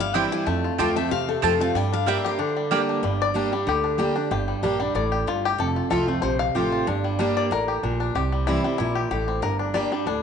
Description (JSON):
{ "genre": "bluegrass", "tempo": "188 BPM", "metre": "4/4", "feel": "swing 53% on 8ths", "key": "G dorian", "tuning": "A4 = 440 Hz", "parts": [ { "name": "bluegrass banjo", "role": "melody", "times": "0.0-10.2 s", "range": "G3 to F5", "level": "-27 LUFS", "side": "left 6 dB", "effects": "none" }, { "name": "picked steel-string acoustic guitar", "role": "melody", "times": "0.0-2.5 s", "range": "A4 to A5", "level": "-27 LUFS", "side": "left 7 dB", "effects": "none" }, { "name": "picked steel-string acoustic guitar", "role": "accompaniment", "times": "0.0-10.2 s", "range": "F2 to G4", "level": "-24 LUFS", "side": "right 2 dB", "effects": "none" }, { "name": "upright bass", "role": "bass", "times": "0.0-10.2 s", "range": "F1 to G2", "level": "-30 LUFS", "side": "right 1 dB", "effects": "none" }, { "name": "mandolin", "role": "stabs", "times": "0.1-2.8 s", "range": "Bb3 to A5", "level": "-28 LUFS", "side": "right 10 dB", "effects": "none" } ], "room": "wet echo chamber reverb, RT60 1.7 s, studio ambience", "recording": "1960s-style stereo with parts hard left and right, nothing above 10.4 kHz", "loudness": "-21 LUFS", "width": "side -7 dB against mid", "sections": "0.0-3.0 A section; 3.0-10.2 B section", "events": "five-string banjo solo 3.0-10.2", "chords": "0.5 F; 1.8 Gm; 5.6 F; 6.9 Gm; 8.2 C; 9.4 Gm", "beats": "0.15 | 0.47 0.79 1.11 1.43 | 1.75 2.07 2.39 2.71 | 3.03 3.35 3.67 3.99 | 4.31 4.63 4.96 5.28 | 5.59 5.92 6.24 6.55 | 6.88 7.20 7.51 7.83 | 8.15 8.47 8.79 9.12 | 9.44 9.76 10.07" }